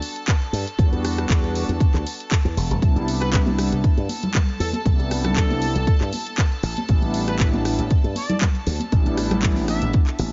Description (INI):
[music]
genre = nu-disco, nu disco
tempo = 118 BPM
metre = 4/4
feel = swing 54% on 16ths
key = unclear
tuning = A4 = 440 Hz
[part]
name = warm studio string section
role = sustained chords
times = 0.0-10.3 s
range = A4 to A5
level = -37 LUFS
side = equal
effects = sidechain pumping
[part]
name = house drum kit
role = drums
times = 0.0-10.3 s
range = handclaps, hi-hat, rim click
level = -32 LUFS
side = equal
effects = overdrive
[part]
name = electronic kick drum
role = drums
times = 0.3-10.1 s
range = none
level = -21 LUFS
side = equal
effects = overdrive
[part]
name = slap bass with an envelope filter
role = bass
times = 0.5-10.3 s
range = E1 to G2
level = -26 LUFS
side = equal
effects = none
[part]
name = warm analog pad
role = accompaniment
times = 0.8-9.8 s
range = G3 to F#4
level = -31 LUFS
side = equal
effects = chorus, sidechain pumping, digital delay
[part]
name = warm trumpet section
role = melody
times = 3.2-9.9 s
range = A4 to E5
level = -34 LUFS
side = equal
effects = digital delay
[part]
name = congas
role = percussion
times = 3.5-10.3 s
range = none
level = -30 LUFS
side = equal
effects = none
[sound]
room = studio reverb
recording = nothing above 7.5 kHz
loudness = -21 LUFS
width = mono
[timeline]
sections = 0.0-10.3 A section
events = none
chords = 0.0 Em7; 2.8 Cmaj7; 6.6 A7sus4